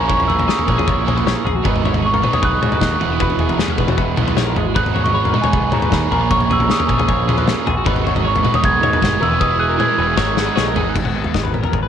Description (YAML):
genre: math rock and midwest emo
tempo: 154 BPM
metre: 4/4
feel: straight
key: G# minor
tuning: A4 = 441 Hz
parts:
  - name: glockenspiel with rubber mallets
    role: melody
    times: 0.0-10.5 s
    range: G#5 to G#6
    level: -20 LUFS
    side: right 1 dB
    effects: none
  - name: twelve-string electric guitar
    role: accompaniment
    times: 0.0-11.9 s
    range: G#2 to B4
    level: -25 LUFS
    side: right 13 dB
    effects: tremolo
  - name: twelve-string electric guitar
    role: arpeggios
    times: 0.0-11.9 s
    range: F#4 to F#5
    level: -25 LUFS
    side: left 11 dB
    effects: none
  - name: crunchy overdriven guitar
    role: riff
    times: 0.0-11.0 s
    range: G#2 to E#4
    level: -24 LUFS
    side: right 14 dB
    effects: none
  - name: growling picked electric bass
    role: bass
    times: 0.0-11.9 s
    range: E1 to G#2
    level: -22 LUFS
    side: right 1 dB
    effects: overdrive
  - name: loose indie drum kit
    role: drums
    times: 0.1-11.8 s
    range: crash cymbal, kick drum, snare drum, toms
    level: -19 LUFS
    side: left 3 dB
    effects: none
room: light reverb, small room ambience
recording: 1960s-style stereo with parts hard left and right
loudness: -14 LUFS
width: side -9 dB against mid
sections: 0.0-11.0 A section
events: drum fill 9.4-11.0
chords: 0.0 A#m7b5; 1.6 G#m11; 3.0 Emaj9; 4.8 G#m11; 6.1 A#m7; 7.9 G#m11; 9.2 Emaj9; 10.2 G#m11